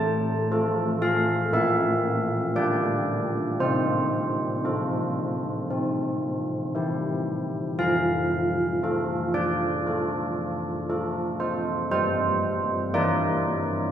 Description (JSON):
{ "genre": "classical, tune for church bells", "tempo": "58 BPM", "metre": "4/4", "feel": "straight", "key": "F major", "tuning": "A4 = 440 Hz", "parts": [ { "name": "old church bells", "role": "solo", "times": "0.0-13.9 s", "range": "F3 to A5", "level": "-23 LUFS", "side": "equal", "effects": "none" } ], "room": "wet recital hall reverb, RT60 1.7 s", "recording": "heard from further back in the room", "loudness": "-23 LUFS", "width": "side -9 dB against mid", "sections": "0.0-13.9 A section", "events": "none", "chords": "0.0 F/A; 1.5 Gm/Bb; 3.6 F/C; 5.7 C; 7.8 F; 11.9 C7/G" }